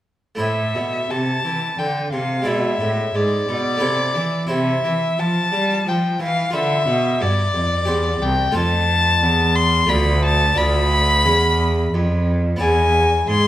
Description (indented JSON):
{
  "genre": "classical, baroque-style sonata movement with continuo",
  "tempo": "89 BPM",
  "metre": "3/4",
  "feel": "rubato",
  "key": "A minor",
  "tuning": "A4 = 439 Hz",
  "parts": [
    { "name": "rich violin", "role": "melody", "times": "0.4-13.5 s", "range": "D5 to C6", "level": "-20 LUFS", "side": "left 2 dB", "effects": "none" },
    { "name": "harpsichord", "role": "accompaniment", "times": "0.4-13.5 s", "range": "C2 to D5", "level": "-24 LUFS", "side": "right 1 dB", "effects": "none" },
    { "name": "rich cello", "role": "bass", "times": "0.4-13.5 s", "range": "C2 to G3", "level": "-20 LUFS", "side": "right 1 dB", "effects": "none" }
  ],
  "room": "wet recital hall reverb, RT60 1.7 s",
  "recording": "none",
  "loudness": "-16 LUFS",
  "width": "side -13 dB against mid",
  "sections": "0.4-13.5 A section",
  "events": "none",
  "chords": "0.4 Am; 2.5 E7; 3.8 Am/C; 4.5 C; 6.6 G7; 7.9 C/E; 8.6 F; 9.9 Dm; 10.6 Bdim/D; 12.6 E7"
}